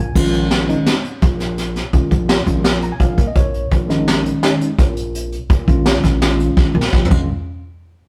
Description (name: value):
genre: progressive instrumental, band music in an uneven meter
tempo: 168 BPM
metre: 5/4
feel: straight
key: Bb minor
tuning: A4 = 440 Hz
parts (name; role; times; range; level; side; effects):
- tine electric piano; accompaniment; 0.0-7.3 s; Eb3 to Bb5; -22 LUFS; equal; overdrive
- upright bass; bass; 0.0-7.3 s; Bb1 to Bb2; -21 LUFS; equal; none
- vintage brush drum kit; drums; 0.2-7.2 s; crash cymbal, hi-hat, kick drum, snare drum, toms; -19 LUFS; equal; none
room: moderate stone room reverb, RT60 1.1 s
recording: rough rehearsal-room recording, tube saturation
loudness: -16 LUFS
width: mono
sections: 0.2-7.3 A section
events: tine electric piano fill 0.0, 2.7-3.7; drum fill 6.6-7.3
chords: 0.2 Bbm7; 7.3 N.C.